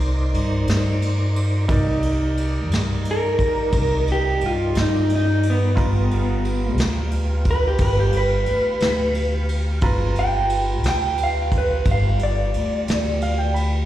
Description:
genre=slow blues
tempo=59 BPM (dotted quarters)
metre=12/8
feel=straight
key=C minor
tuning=A4 = 440 Hz
part: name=clear concert grand piano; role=accompaniment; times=0.0-13.9 s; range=Eb4 to B5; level=-31 LUFS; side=right 3 dB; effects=plate reverb, slapback echo
part: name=tonewheel organ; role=sustained chords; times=0.0-13.9 s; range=F#3 to F5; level=-30 LUFS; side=equal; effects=chorus vibrato, slow rotary speaker
part: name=upright bass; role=bass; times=0.0-13.9 s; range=G1 to G2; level=-21 LUFS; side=equal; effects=none
part: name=vintage brush drum kit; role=drums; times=0.0-13.7 s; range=kick drum, ride cymbal, snare drum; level=-26 LUFS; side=equal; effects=none
part: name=electric guitar through a small old amp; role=melody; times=3.1-13.5 s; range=B3 to G5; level=-22 LUFS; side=equal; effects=spring reverb, plate reverb, slapback echo
room=little or no reverb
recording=live gig heard through the venue's PA, recital hall reverb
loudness=-18 LUFS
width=side -13 dB against mid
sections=0.0-13.9 A section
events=clean electric guitar solo 0.0-13.9; grand piano fill 12.9-13.9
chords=0.0 Cm9; 5.8 G7#9

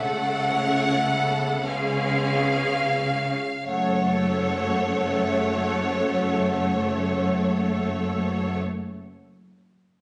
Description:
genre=classical, slow romantic movement for symphony orchestra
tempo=28-38 BPM (dotted quarters)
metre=6/8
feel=rubato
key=F# minor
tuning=A4 = 438 Hz
part: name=rich symphonic violin section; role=melody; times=0.0-8.6 s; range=G#4 to C#5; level=-36 LUFS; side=equal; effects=none
part: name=large flute ensemble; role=second line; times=0.0-8.6 s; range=E#5 to F#5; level=-32 LUFS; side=equal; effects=none
part: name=rich symphonic violin section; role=second line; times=0.0-8.6 s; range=C#5 to F#5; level=-32 LUFS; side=equal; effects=none
part: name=rich symphonic viola section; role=accompaniment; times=0.0-8.6 s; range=A3 to A4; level=-31 LUFS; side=equal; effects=none
part: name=warm French horn section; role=sustained chords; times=0.0-8.6 s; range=G#3 to C#4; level=-34 LUFS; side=equal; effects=none
part: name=clear symphonic double bass section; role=bass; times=0.0-8.6 s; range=F#1 to C#2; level=-36 LUFS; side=equal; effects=none
part: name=rich symphonic cello section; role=bass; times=0.0-8.6 s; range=F#2 to C#3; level=-30 LUFS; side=equal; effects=none
room=moderate recital hall reverb, RT60 1.4 s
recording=recorded on a phone in the room, studio reverb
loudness=-24 LUFS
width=mono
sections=0.0-3.7 A section; 3.7-7.8 B section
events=slowing down 0.0-3.7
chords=0.0 F#m/C#; 1.6 C#7; 3.7 F#m

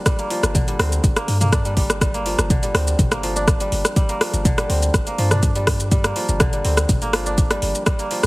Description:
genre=afro house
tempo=123 BPM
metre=4/4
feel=straight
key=G minor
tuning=A4 = 440 Hz
part: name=kora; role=arpeggios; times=0.0-8.3 s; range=D3 to D4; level=-24 LUFS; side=equal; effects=sidechain pumping, tape echo
part: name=deep house drum kit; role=drums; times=0.1-8.3 s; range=hi-hat, rim click, shaker, toms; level=-22 LUFS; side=equal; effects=none
part: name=electronic kick drum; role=drums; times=0.1-8.0 s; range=none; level=-19 LUFS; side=equal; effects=none
part: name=warm 808-style bass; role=bass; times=0.4-8.3 s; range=G1 to G2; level=-22 LUFS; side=equal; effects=sidechain pumping
room=little or no reverb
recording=heavily compressed radio sound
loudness=-17 LUFS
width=side -22 dB against mid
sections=0.0-8.3 A section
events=none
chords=0.0 Gm7

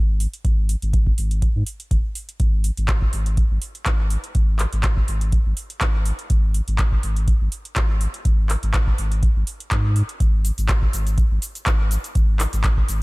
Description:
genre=acid house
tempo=123 BPM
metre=4/4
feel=swing 54% on 16ths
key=unclear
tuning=A4 = 440 Hz
part: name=warm sub bass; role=bass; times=0.0-13.0 s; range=F#1 to G#2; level=-21 LUFS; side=equal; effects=sidechain pumping
part: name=booming analog drum machine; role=drums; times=0.2-13.0 s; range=handclaps, hi-hat, shaker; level=-28 LUFS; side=equal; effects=none
part: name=electronic kick drum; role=drums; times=0.4-12.9 s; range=none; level=-20 LUFS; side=equal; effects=none
room=little or no reverb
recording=none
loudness=-18 LUFS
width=side -24 dB against mid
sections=0.0-13.0 A section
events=none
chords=none

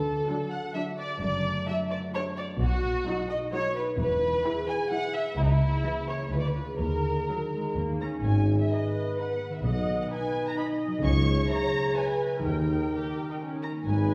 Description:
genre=cinematic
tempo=129 BPM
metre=3/4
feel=straight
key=G# minor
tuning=A4 = 436 Hz
part: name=muted studio violin section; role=second line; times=0.0-13.9 s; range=C#4 to G#5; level=-34 LUFS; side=equal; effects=none
part: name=concert harp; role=arpeggios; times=0.0-14.1 s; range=F#2 to A#5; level=-33 LUFS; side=equal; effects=none
part: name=muted studio cello section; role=bass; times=0.0-14.1 s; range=C#2 to D#3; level=-35 LUFS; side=equal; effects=none
part: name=muted studio double bass section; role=bass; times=0.0-14.1 s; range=E1 to D#2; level=-34 LUFS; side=equal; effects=none
part: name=muted studio violin section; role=melody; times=0.3-14.1 s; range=D#5 to C#6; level=-39 LUFS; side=equal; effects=none
part: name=muted symphonic viola section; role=accompaniment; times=0.3-14.1 s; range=E3 to D#5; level=-38 LUFS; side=equal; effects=none
part: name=clear tuba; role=bass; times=8.2-14.1 s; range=G#1 to D#2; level=-34 LUFS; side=equal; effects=none
room=wet recital hall reverb, RT60 1.7 s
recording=heard from further back in the room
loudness=-28 LUFS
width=mono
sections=0.0-8.2 A section; 8.2-14.1 B section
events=none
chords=0.0 D; 1.2 D/F#; 2.6 B; 4.0 E; 5.4 A#dim/C#; 6.3 Ddim7; 6.8 D#sus4; 7.8 D#; 8.2 G#m; 9.7 B; 11.0 C#m; 12.4 D#

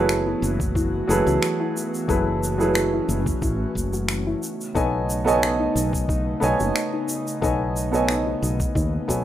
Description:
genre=sunset chillout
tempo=90 BPM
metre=4/4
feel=straight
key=F# dorian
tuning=A4 = 440 Hz
part: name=warm baby grand piano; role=accompaniment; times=0.0-9.2 s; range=F#3 to G#5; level=-24 LUFS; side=moving between left 4 dB and right 3 dB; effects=auto-pan, tape echo
part: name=airy breathy pad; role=sustained chords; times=0.0-9.2 s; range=C#3 to F#4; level=-28 LUFS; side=equal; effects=chorus
part: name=soft round pluck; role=arpeggios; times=0.0-9.2 s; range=D#4 to F#4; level=-32 LUFS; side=left 3 dB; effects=chorus, cassette tape, tape echo
part: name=woody fretless electric bass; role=bass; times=0.0-9.2 s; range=F#1 to D#2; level=-26 LUFS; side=equal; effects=tube saturation
part: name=finger snaps and shaker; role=drums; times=0.1-9.2 s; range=none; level=-29 LUFS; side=equal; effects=none
part: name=electronic kick drum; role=drums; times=0.6-9.2 s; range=none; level=-26 LUFS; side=equal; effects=none
room=wet studio reverb, RT60 0.6 s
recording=rough home demo mix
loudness=-20 LUFS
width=side -12 dB against mid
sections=0.0-9.2 A section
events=none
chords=0.0 F#m11; 4.4 B13

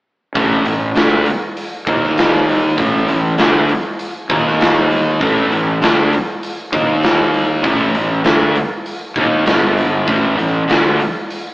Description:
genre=blues rock power trio and southern rock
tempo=99 BPM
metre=4/4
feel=straight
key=unclear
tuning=A4 = 440 Hz
part: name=thick fuzz guitar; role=riff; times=0.3-11.0 s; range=G2 to D#4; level=-16 LUFS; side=equal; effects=distortion
part: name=fuzz fingered electric bass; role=bass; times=0.3-11.0 s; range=G1 to D#2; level=-19 LUFS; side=equal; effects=overdrive
part: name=big rock drum kit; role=drums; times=0.4-11.4 s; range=hi-hat, kick drum, snare drum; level=-17 LUFS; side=equal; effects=none
room=light reverb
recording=rough rehearsal-room recording, tube saturation, AM radio sound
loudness=-12 LUFS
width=side -20 dB against mid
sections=0.4-11.5 A section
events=none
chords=0.4 A5; 1.9 D#5; 2.8 A5; 4.3 D#5; 5.2 A5; 6.7 D#5; 7.6 A5; 9.5 G5; 10.1 A5

